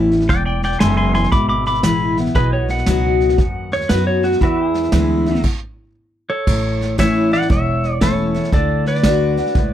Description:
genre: honky-tonk and classic country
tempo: 117 BPM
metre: 4/4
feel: swing 65% on 8ths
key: A major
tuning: A4 = 439 Hz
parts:
  - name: picked steel-string acoustic guitar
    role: accompaniment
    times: 0.0-9.7 s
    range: E2 to F#4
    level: -19 LUFS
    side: left 3 dB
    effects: none
  - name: pedal steel guitar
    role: sustained chords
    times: 0.0-5.4 s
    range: F#4 to E5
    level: -30 LUFS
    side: right 2 dB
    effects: none
  - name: upright bass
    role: bass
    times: 0.0-9.7 s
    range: E1 to F#2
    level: -21 LUFS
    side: right 1 dB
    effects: none
  - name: vintage brush drum kit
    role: drums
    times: 0.1-9.7 s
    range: crash cymbal, hi-hat, kick drum, snare drum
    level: -20 LUFS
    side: right 1 dB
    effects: none
  - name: pedal steel guitar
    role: melody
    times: 0.3-9.7 s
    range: E4 to D6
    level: -20 LUFS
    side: right 1 dB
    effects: none
room: little or no reverb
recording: dry, close 1970s-style studio recording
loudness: -14 LUFS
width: side -11 dB against mid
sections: 0.0-6.5 A section; 6.5-9.7 B section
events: pedal steel guitar solo 0.0-6.5; stop 5.4-6.5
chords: 0.3 E; 2.4 B; 4.4 E; 6.5 A; 8.5 D

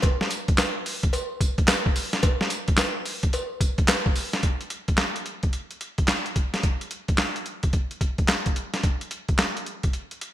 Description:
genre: R&B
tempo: 109 BPM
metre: 4/4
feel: swing 64% on 16ths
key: none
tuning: none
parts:
  - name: boom bap sampler-style drum kit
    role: drums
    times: 0.0-10.3 s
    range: handclaps, hi-hat, kick drum, snare drum, tambourine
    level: -22 LUFS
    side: equal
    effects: none
  - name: cowbell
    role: percussion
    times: 0.0-4.1 s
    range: none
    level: -32 LUFS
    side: left 1 dB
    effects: none
room: light reverb, digital ambience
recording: bright 1980s-style digital production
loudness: -22 LUFS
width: side -13 dB against mid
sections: 0.0-4.4 A section; 4.4-10.3 B section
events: none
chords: none

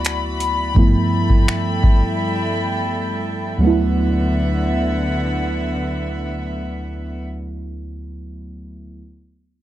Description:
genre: contemporary R&B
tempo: 84 BPM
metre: 4/4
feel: straight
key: D major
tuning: A4 = 441 Hz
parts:
  - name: muted felt-like synth keys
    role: accompaniment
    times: 0.0-9.0 s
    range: D2 to E4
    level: -21 LUFS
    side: right 1 dB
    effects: chorus
  - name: warm studio string section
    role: sustained chords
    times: 0.0-7.2 s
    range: D3 to B5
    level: -24 LUFS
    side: left 1 dB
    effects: none
  - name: booming analog drum machine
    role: drums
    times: 0.0-2.0 s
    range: finger snaps, hi-hat, kick drum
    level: -14 LUFS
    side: equal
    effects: none
room: moderate studio ambience, RT60 0.5 s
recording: dark, warm production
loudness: -17 LUFS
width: side -13 dB against mid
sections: 0.0-3.6 A section; 3.6-6.5 B section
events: break 2.2-3.6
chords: 0.0 D69; 0.8 G13; 3.6 D69

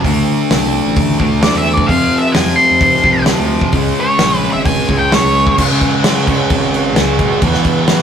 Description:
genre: quiet-loud alternative rock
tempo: 130 BPM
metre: 4/4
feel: straight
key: unclear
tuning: A4 = 437 Hz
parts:
  - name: thick fuzz guitar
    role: riff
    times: 0.0-8.0 s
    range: E2 to D4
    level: -15 LUFS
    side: equal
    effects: distortion
  - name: fuzz fingered electric bass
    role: bass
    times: 0.0-8.0 s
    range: G#1 to E3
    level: -19 LUFS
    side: equal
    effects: overdrive
  - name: loose indie drum kit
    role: drums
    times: 0.0-8.0 s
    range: crash cymbal, hi-hat, kick drum, snare drum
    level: -16 LUFS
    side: equal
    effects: none
  - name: octave-fuzz lead guitar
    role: melody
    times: 1.4-5.6 s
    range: C#5 to C6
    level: -13 LUFS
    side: equal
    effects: distortion
room: moderate studio reverb, RT60 0.6 s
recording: rough rehearsal-room recording, warm saturation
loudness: -10 LUFS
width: side -8 dB against mid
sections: 0.0-5.6 A section; 5.6-8.0 B section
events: lead electric guitar solo 0.0-5.6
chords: 0.0 D5; 1.9 F5; 3.7 C#5; 7.4 E5

